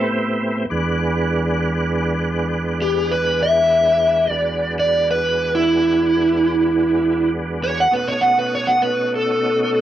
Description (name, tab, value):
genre	blues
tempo	66 BPM (dotted quarters)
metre	12/8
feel	straight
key	E mixolydian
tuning	A4 = 440 Hz
part	overdriven slide guitar	melody	0.0-9.8 s	E4 to F#5	-16 LUFS	equal	none
part	tonewheel organ	sustained chords	0.0-9.8 s	E2 to F#5	-22 LUFS	right 1 dB	slow rotary speaker, chorus vibrato
room	moderate club reverb, RT60 0.7 s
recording	worn, warbling old tape, cassette tape, warbly pitch drift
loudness	-16 LUFS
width	side -11 dB against mid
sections	0.0-9.8 A section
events	electric slide guitar solo 0.0-9.8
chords	0.0 Am7; 0.7 E9; 7.9 B9